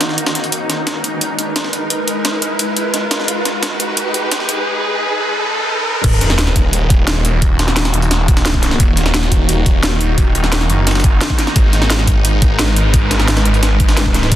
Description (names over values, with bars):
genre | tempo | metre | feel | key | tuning
dark technical drum and bass | 174 BPM | 4/4 | straight | Eb minor | A4 = 440 Hz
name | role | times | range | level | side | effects
swarming drone | sustained chords | 0.0-14.4 s | Eb3 to Cb5 | -20 LUFS | equal | built-in reverb, sidechain pumping
breakbeat sampler-style drum kit | drums | 0.0-14.4 s | hi-hat, snare drum | -22 LUFS | equal | high-pass filter on snare, high-pass filter on hats
drum and bass drum kit | drums | 0.0-14.4 s | crash cymbal, hi-hat, snare drum | -19 LUFS | equal | overdrive
riser and sub drop | sound effects | 0.0-7.4 s | none | -22 LUFS | equal | none
snarling distorted saw bass | bass | 6.0-14.4 s | Eb1 to Ab1 | -15 LUFS | equal | distortion, tube saturation
electronic kick drum | drums | 6.0-14.4 s | none | -13 LUFS | equal | overdrive
room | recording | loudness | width
light reverb, digital ambience | dense, heavily limited modern master, high-pass filter | -12 LUFS | side -12 dB against mid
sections
0.0-6.0 A section; 6.0-14.4 B section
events
build-up 0.0-6.0; riser 0.0-6.0; drop 6.0-14.4; impact 6.0-7.4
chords
0.0 Ebm; 0.5 Abm; 6.0 Ebm; 11.6 Abm